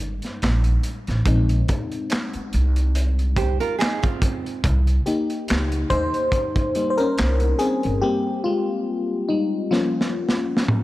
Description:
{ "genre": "R&B, neo-soul", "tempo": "71 BPM", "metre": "4/4", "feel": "swing 55% on 16ths", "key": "unclear", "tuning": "A4 = 439 Hz", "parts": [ { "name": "FM electric piano", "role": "accompaniment", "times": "0.0-10.8 s", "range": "F3 to C5", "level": "-23 LUFS", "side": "left 2 dB", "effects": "chorus" }, { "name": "upright bass", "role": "bass", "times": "0.0-8.0 s", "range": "G1 to Eb2", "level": "-20 LUFS", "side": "equal", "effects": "none" }, { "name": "crunchy breakbeat drum kit", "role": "drums", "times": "0.2-10.8 s", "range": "handclaps, hi-hat, kick drum, snare drum, toms", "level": "-24 LUFS", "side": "equal", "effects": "none" }, { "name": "nylon-string guitar", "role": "second line", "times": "3.4-4.6 s", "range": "C4 to C5", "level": "-25 LUFS", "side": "right 6 dB", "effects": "none" } ], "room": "light reverb, small room ambience", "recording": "none", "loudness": "-19 LUFS", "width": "side -16 dB against mid", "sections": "0.0-10.8 A section", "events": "FM electric piano solo 0.0-10.8; drum fill 9.7-10.8", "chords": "0.0 Fm9 (rootless); 1.3 Bb9sus4 (rootless); 4.6 Cm7; 8.0 Abmaj9; 9.7 Bbm6/F", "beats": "0.41 | 1.25 2.10 2.94 3.79 | 4.63 5.48 6.33 7.17 | 8.02 8.86 9.71 10.55" }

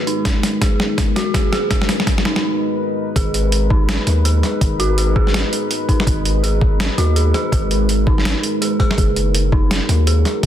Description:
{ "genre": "half-time drum and bass", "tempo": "165 BPM", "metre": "4/4", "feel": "swing 60% on 16ths, half-time", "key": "G# minor", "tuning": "A4 = 440 Hz", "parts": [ { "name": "deep dark ambient pad", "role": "sustained chords", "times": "0.0-10.5 s", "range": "G#3 to B4", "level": "-22 LUFS", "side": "left 1 dB", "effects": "chorus, built-in reverb, sidechain pumping" }, { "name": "dark detuned synth bell", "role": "arpeggios", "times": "0.0-10.5 s", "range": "D#4 to G#4", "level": "-24 LUFS", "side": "right 2 dB", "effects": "chorus, low-pass filter, tape echo" }, { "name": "boom bap sampler-style drum kit", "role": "drums", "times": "0.1-10.5 s", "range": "hi-hat, snare drum", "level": "-21 LUFS", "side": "equal", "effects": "overdrive, small room reverb" }, { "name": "electronic kick drum", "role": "drums", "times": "0.3-10.5 s", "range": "none", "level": "-17 LUFS", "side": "equal", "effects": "overdrive, small room reverb" }, { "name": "long sustained 808-style bass", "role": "bass", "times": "3.2-10.5 s", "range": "F#1 to D#2", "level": "-17 LUFS", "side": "equal", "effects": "none" } ], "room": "light reverb", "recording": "dense, heavily limited modern master", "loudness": "-14 LUFS", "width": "side -10 dB against mid", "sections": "0.0-3.2 A section; 3.2-10.5 B section", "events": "build-up 0.0-3.2; drum fill 0.0-2.4; filter sweep on ambient pad 0.0-3.2; filter sweep on synth bell 0.0-3.2; break 2.4-3.2; drop 3.2-10.5", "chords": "0.0 G#madd9; 9.0 F#", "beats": "| 0.25 0.62 0.98 1.34 | 1.71 2.07 2.43 2.80 | 3.16 3.52 3.89 4.25 | 4.62 4.98 5.34 5.71 | 6.07 6.43 6.80 7.16 | 7.53 7.89 8.25 8.62 | 8.98 9.34 9.71 10.07 | 10.43" }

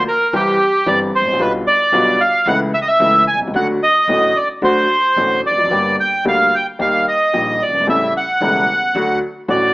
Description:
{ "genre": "tango", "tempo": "111 BPM", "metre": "4/4", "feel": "rubato", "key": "unclear", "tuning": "A4 = 440 Hz", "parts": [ { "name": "bandoneon", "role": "melody", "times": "0.0-9.7 s", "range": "G4 to Ab5", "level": "-14 LUFS", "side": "right 1 dB", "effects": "none" }, { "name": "warm baby grand piano", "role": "accompaniment", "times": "0.0-9.7 s", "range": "E1 to G4", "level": "-19 LUFS", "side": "left 1 dB", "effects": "none" }, { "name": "upright bass", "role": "bass", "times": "0.3-9.7 s", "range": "E1 to Eb2", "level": "-30 LUFS", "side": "right 1 dB", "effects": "none" } ], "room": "moderate large studio reverb, RT60 1.1 s", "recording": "AM radio sound", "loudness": "-13 LUFS", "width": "side -21 dB against mid", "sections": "0.0-9.7 A section", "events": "none", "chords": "0.3 C; 1.4 G7/B; 2.5 A/C#; 3.5 D; 5.7 Gm; 6.8 Eb; 7.9 A7; 8.9 D", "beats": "0.33 0.86 | 1.40 1.93 2.46 3.00 | 3.54 4.08 4.62 5.16 | 5.71 6.25 6.80 7.34 | 7.88 8.41 8.95 9.48" }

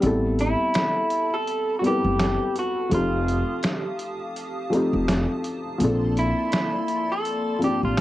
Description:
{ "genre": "lo-fi hip hop", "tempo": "83 BPM", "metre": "4/4", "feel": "swing 57% on 16ths", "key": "unclear", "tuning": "A4 = 437 Hz", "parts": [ { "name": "felt-muted upright piano", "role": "accompaniment", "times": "0.0-8.0 s", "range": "F3 to B4", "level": "-25 LUFS", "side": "left 1 dB", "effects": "cassette tape" }, { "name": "hollow soft pad", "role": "sustained chords", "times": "0.0-8.0 s", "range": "Bb3 to Eb6", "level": "-34 LUFS", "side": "right 1 dB", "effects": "ensemble chorus, cassette tape" }, { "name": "upright bass", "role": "bass", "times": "0.0-8.0 s", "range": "F1 to Bb1", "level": "-25 LUFS", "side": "right 1 dB", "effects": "none" }, { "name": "trip hop sampler-style drum kit", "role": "drums", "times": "0.0-8.0 s", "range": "finger snaps, hi-hat, snare drum", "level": "-27 LUFS", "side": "equal", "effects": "vintage 12-bit sampler grit, cassette tape" }, { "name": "electric guitar through a small old amp", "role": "melody", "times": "0.4-8.0 s", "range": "E4 to A4", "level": "-25 LUFS", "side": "equal", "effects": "cassette tape" } ], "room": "moderate booth ambience, RT60 0.2 s", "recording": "home recording on cassette", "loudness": "-21 LUFS", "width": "side -15 dB against mid", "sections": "0.0-8.0 A section", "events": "break 0.0-8.0", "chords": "0.0 Am9; 2.9 F9; 5.8 Bbmaj9", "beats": "| 0.02 0.74 1.47 2.19 | 2.91 3.64 4.36 5.08 | 5.80 6.53 7.25 7.97" }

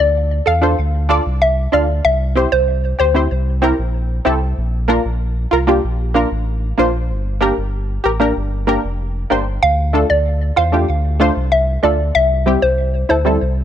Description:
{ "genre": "dancehall", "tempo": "95 BPM", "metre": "4/4", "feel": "straight", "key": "D minor", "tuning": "A4 = 438 Hz", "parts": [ { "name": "hollow square pluck", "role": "melody", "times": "0.0-3.1, 9.6-13.2 s", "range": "C5 to F5", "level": "-17 LUFS", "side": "equal", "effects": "chorus, tape echo" }, { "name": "sub bass with octave", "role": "bass", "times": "0.0-13.6 s", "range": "F1 to E2", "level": "-18 LUFS", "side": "equal", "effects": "none" }, { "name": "punchy chord stab", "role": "accompaniment", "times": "0.5-13.4 s", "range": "G3 to F5", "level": "-18 LUFS", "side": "equal", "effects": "chorus" } ], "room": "light reverb, digital ambience", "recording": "none", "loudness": "-14 LUFS", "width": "side -10 dB against mid", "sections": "0.0-13.6 A section", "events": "none", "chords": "0.0 Dm; 2.0 C; 4.6 Bb; 7.1 Gm; 9.6 Dm; 12.2 C", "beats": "0.15 0.78 1.42 | 2.05 2.68 3.31 3.94 | 4.57 5.20 5.84 6.47 | 7.10 7.73 8.36 8.99 | 9.62 10.26 10.89 11.52 | 12.15 12.78 13.41" }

